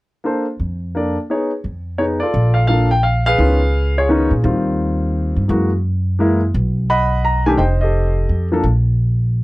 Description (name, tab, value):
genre	jazz piano trio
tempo	172 BPM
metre	3/4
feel	swing 64% on 8ths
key	unclear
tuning	A4 = 439 Hz
part	clear grand piano	melody	0.2-8.6 s	Eb3 to B5	-17 LUFS	equal	none
part	upright bass	bass	0.6-9.4 s	F1 to Bb2	-17 LUFS	equal	none
room	little or no reverb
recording	dry, close 1970s-style studio recording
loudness	-15 LUFS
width	side -19 dB against mid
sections	0.2-2.3 A section; 2.3-9.4 B section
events	none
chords	0.2 Bbmaj7; 3.4 Db9; 4.4 Eb69; 5.5 Gb9; 6.5 B; 7.6 F9; 8.6 N.C.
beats	| 0.24 0.59 0.94 | 1.29 1.64 1.99 | 2.34 2.69 3.04 | 3.39 3.74 4.09 | 4.44 4.79 5.14 | 5.49 5.84 6.19 | 6.54 6.89 7.24 | 7.58 7.93 8.28 | 8.63 8.98 9.33